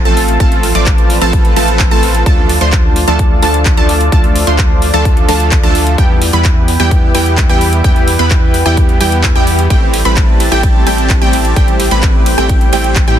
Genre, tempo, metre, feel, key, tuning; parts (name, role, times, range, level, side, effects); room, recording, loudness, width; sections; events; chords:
EDM, festival progressive house; 129 BPM; 4/4; straight; A minor; A4 = 440 Hz
lush unison pad; sustained chords; 0.0-13.2 s; C4 to A5; -20 LUFS; equal; chorus, sidechain pumping
wide unison pluck; arpeggios; 0.0-13.2 s; G5 to D6; -19 LUFS; right 1 dB; sidechain pumping, tape echo
supersaw stab; riff; 0.0-13.2 s; E3 to D5; -15 LUFS; right 2 dB; sidechain pumping, tape echo
saturated sub bass; bass; 0.0-13.2 s; A1 to A2; -15 LUFS; equal; tube saturation, sidechain pumping
big-room dance drum kit; drums; 0.1-13.2 s; handclaps, hi-hat, ride cymbal; -19 LUFS; equal
electronic kick drum; drums; 0.4-13.1 s; -11 LUFS; equal
little or no reverb; dense, heavily limited modern master; -8 LUFS; side -10 dB against mid
0.0-13.2 A section
0.0 F/A; 2.3 Dm; 6.0 Em; 9.7 Am7